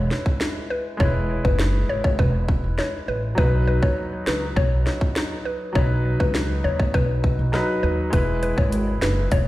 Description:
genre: dancehall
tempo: 101 BPM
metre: 4/4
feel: straight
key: E major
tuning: A4 = 440 Hz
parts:
  - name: mallet-like synth pluck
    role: melody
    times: 0.0-9.5 s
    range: B4 to C#5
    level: -27 LUFS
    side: left 2 dB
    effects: chorus, tape echo
  - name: clear concert grand piano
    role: accompaniment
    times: 0.0-9.5 s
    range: F#3 to B4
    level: -28 LUFS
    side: equal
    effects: sidechain pumping
  - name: upright bass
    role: bass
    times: 0.0-9.5 s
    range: E1 to D#2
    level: -23 LUFS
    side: equal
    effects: none
  - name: island pop drum kit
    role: drums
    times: 0.1-9.5 s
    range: hi-hat, kick drum, rim click, snare drum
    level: -22 LUFS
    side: equal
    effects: none
room: little or no reverb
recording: played on a big sound system in a bare room, stone room reverb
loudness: -19 LUFS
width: side -16 dB against mid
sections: 0.0-9.5 A section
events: break 0.0-8.1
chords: 0.0 E; 3.4 B; 8.1 E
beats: 0.41 | 1.00 1.59 2.19 2.78 | 3.38 3.97 4.57 5.16 | 5.75 6.35 6.94 7.54 | 8.13 8.72 9.32

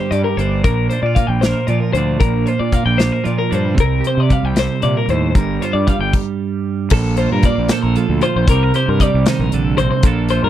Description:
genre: math rock and midwest emo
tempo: 77 BPM (dotted quarters)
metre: 6/8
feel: straight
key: unclear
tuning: A4 = 440 Hz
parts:
  - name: twelve-string electric guitar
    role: accompaniment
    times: 0.0-10.5 s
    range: G2 to Bb4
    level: -19 LUFS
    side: right 6 dB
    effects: none
  - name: twelve-string electric guitar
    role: arpeggios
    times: 0.0-10.5 s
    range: A4 to G5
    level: -20 LUFS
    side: left 6 dB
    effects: none
  - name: fuzz fingered electric bass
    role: bass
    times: 0.1-10.5 s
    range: G1 to C3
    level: -19 LUFS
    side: equal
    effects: overdrive
  - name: modern studio drum kit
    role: drums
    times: 0.1-10.4 s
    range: crash cymbal, hi-hat, kick drum, snare drum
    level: -16 LUFS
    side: left 1 dB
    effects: none
room: little or no reverb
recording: dry, close 1970s-style studio recording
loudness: -14 LUFS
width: side -12 dB against mid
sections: 0.0-6.9 A section; 6.9-10.5 B section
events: stop 6.1-6.9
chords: 0.0 Ebmaj7/G; 0.6 Bb; 3.8 Cm9; 5.3 Gm7; 6.9 Bbmaj7; 8.5 Cm7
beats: | 0.64 1.42 | 2.21 2.99 | 3.78 4.56 | 5.34 6.12 | 6.91 7.69 | 8.47 9.25 | 10.03

